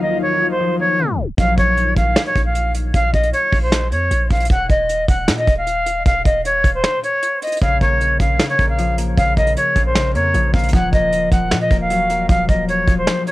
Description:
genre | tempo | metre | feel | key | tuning
hip hop, trap | 154 BPM | 4/4 | half-time | Bb minor | A4 = 440 Hz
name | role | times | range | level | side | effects
silver concert flute | melody | 0.0-13.3 s | C5 to Gb5 | -18 LUFS | equal | low-pass filter, cassette tape, analog delay
concert harp | accompaniment | 0.0-4.4, 7.6-13.3 s | Db3 to Bb3 | -24 LUFS | left 3 dB | low-pass filter, cassette tape
ethereal airy pad | sustained chords | 0.0-1.4 s | Eb2 to F4 | -28 LUFS | left 3 dB | ensemble chorus, built-in reverb, low-pass filter, cassette tape
warm 808-style bass | bass | 1.4-13.1 s | Eb1 to Bb2 | -21 LUFS | equal | none
soft brush drum kit | drums | 1.4-13.3 s | hi-hat, kick drum, snare drum | -18 LUFS | equal | cassette tape
room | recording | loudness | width
little or no reverb | home recording on cassette, tape stop | -14 LUFS | side -18 dB against mid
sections
0.0-1.4 A section; 1.4-13.3 B section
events
filter sweep 0.0-1.4; tape stop 1.0-1.4; break 6.8-7.6, 13.1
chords
0.0 Ebmadd9; 1.4 Bbm; 4.5 Ebsus2; 7.6 Bbm; 10.7 Ebmadd9

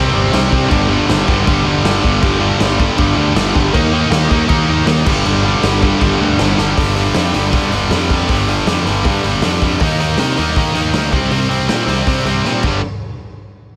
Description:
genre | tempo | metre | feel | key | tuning
punk rock | 158 BPM | 4/4 | straight | G minor | A4 = 441 Hz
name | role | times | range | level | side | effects
distorted electric guitar | riff | 0.0-12.8 s | G2 to Eb4 | -20 LUFS | equal | overdrive
distorted electric guitar | riff | 0.0-6.6 s | G2 to Eb4 | -23 LUFS | equal | none
tight distorted guitar | riff | 0.0-12.8 s | G2 to Eb4 | -21 LUFS | equal | distortion
fuzz picked electric bass | bass | 0.0-12.8 s | G1 to Eb3 | -21 LUFS | equal | overdrive
raw garage drum kit | drums | 0.3-12.7 s | crash cymbal, hi-hat, kick drum, snare drum | -20 LUFS | equal | none
room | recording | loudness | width
light reverb | none | -14 LUFS | mono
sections
0.0-6.8 A section; 6.8-12.8 B section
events
drum fill 6.6, 12.5-12.8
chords
0.0 C5; 0.7 G5; 3.7 Eb5; 5.1 G5; 9.8 Eb5; 11.1 C5; 12.6 G5; 12.8 N.C.

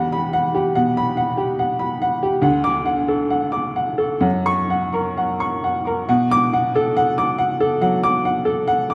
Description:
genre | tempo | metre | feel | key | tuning
neoclassical minimalist piano | 63-72 BPM | 4/4 | rubato | B minor | A4 = 437 Hz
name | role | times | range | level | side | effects
clear upright piano | solo | 0.0-8.9 s | D2 to D6 | -20 LUFS | equal | tape echo
room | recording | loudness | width
moderate recital hall reverb, RT60 1.3 s | close, detailed microphones | -20 LUFS | mono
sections
0.0-6.1 A section; 6.1-8.9 B section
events
none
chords
0.0 Emadd9; 2.4 D; 4.2 F#; 6.1 Bm7

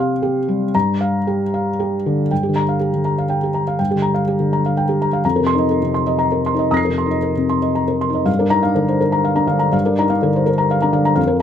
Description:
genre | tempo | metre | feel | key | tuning
neoclassical minimalist piano | 112-128 BPM | 3/4 | rubato | G minor | A4 = 442 Hz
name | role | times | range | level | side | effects
felt-muted upright piano | solo | 0.0-11.4 s | F2 to C7 | -15 LUFS | left 1 dB | none
room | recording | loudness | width
little or no reverb | close, detailed microphones | -15 LUFS | side -9 dB against mid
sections
0.0-2.3 A section; 2.3-8.3 B section; 8.3-11.4 C section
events
none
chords
0.0 Csus4; 0.7 Gm7; 5.2 F7sus4; 8.3 Gm7

